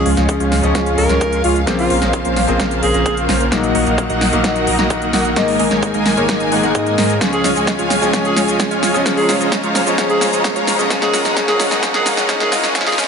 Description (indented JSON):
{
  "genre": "EDM, festival progressive house",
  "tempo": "130 BPM",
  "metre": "4/4",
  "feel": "straight",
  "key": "Db major",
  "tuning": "A4 = 442 Hz",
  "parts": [
    { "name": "breathy alto saxophone", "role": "melody", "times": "0.0-3.2, 7.3-13.0 s", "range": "F4 to Bb4", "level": "-22 LUFS", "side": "right 1 dB", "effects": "dub echo" },
    { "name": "bright grand piano", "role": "accompaniment", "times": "0.0-13.1 s", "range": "Ab2 to Eb4", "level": "-20 LUFS", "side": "left 2 dB", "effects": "sidechain pumping, dub echo" },
    { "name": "warm symphonic string section", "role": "sustained chords", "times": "0.0-13.1 s", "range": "Db4 to Bb5", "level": "-22 LUFS", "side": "left 1 dB", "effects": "sidechain pumping" },
    { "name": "dense compressed supersaw", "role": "riff", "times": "0.0-13.1 s", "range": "Ab3 to Bb5", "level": "-18 LUFS", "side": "right 1 dB", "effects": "sidechain pumping, low-pass filter, dub echo" },
    { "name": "saturated sub bass", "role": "bass", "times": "0.0-13.1 s", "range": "Ab1 to Ab2", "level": "-24 LUFS", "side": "right 1 dB", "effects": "sidechain pumping" },
    { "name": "big-room dance drum kit", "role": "drums", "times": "0.1-13.1 s", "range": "cabasa, hi-hat, snare drum", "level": "-20 LUFS", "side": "right 1 dB", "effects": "overdrive" },
    { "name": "electronic kick drum", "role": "drums", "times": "0.3-12.8 s", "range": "none", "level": "-23 LUFS", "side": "right 1 dB", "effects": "overdrive, high-pass filter on kick" },
    { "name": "riser", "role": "sound effects", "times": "10.2-13.1 s", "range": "none", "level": "-33 LUFS", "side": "right 2 dB", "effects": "none" }
  ],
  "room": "moderate lush hall reverb, RT60 1.9 s",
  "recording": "high-pass filter, nothing above 10.6 kHz",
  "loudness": "-13 LUFS",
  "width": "side -6 dB against mid",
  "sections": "0.0-13.1 A section",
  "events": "build-up 0.0-13.1; drum fill 0.0-13.1; filter sweep on supersaw synth 0.0-13.1; filter sweep 0.0-13.1",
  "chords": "0.0 Db; 1.7 Bbmadd9; 3.5 Ebm/Bb; 5.4 Absus2; 7.2 Db; 9.1 Bbmadd9; 10.9 Ebm/Bb"
}